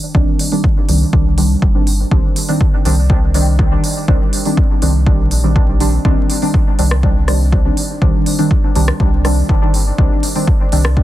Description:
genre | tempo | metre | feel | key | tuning
dub techno | 122 BPM | 4/4 | straight | C minor | A4 = 440 Hz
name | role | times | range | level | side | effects
deep mellow chord stab | stabs | 0.1-11.0 s | Eb3 to D4 | -17 LUFS | equal | chorus, phaser, sidechain pumping, dub echo
pure sine sub bass | bass | 0.1-11.0 s | G1 to C2 | -15 LUFS | equal | sidechain pumping
electronic kick drum | drums | 0.1-11.0 s | none | -14 LUFS | equal | none
deep house drum kit | drums | 0.4-10.9 s | hi-hat, rim click | -22 LUFS | right 1 dB | soft clipping on snare
room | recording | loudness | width
digital ambience | dense, heavily limited modern master, vinyl crackle | -11 LUFS | side -14 dB against mid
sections
0.0-11.0 A section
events
none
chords
0.0 Cmadd9

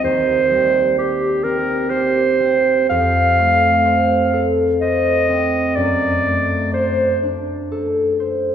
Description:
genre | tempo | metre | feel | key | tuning
classical, romantic duo for clarinet and harp | 62 BPM | 3/4 | rubato | unclear | A4 = 440 Hz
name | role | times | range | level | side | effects
clear clarinet | melody | 0.0-7.2 s | G4 to F5 | -16 LUFS | right 2 dB | none
concert harp | accompaniment | 0.0-8.5 s | Eb2 to C5 | -18 LUFS | equal | none
room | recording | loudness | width
wet concert hall reverb, RT60 2.4 s | heard from further back in the room | -14 LUFS | side -8 dB against mid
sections
0.0-8.5 A section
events
none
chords
0.0 Cm/Eb; 2.9 F; 5.8 D7/F#

